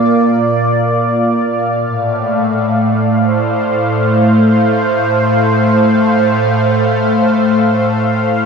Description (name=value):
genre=ambient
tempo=free time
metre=none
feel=none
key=unclear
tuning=A4 = 440 Hz
part: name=warm analog pad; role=solo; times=0.0-8.5 s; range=A2 to F5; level=-11 LUFS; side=equal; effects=chorus, ping-pong delay
room=wet plate reverb, RT60 2.6 s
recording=dreamy mix soaked in reverb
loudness=-11 LUFS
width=side -5 dB against mid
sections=0.0-8.5 A section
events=none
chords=0.0 Bb; 1.8 F/A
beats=free time